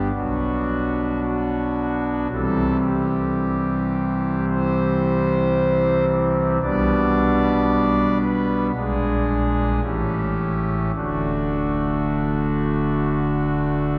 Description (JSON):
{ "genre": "classical, chorale-style piece for pipe organ", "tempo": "56 BPM", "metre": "4/4", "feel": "rubato", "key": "D major from 6.6 s", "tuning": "A4 = 439 Hz", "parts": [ { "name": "pipe organ, foundations", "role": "solo", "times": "0.0-14.0 s", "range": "D1 to D5", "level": "-21 LUFS", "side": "equal", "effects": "none" } ], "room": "wet church reverb, RT60 3.4 s", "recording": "recorded in a church or concert hall", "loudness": "-21 LUFS", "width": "mono", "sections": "0.0-14.0 A section", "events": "none", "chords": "0.2 Bm; 2.3 C; 6.6 G/B; 8.8 Bb7; 9.8 A7; 10.9 D" }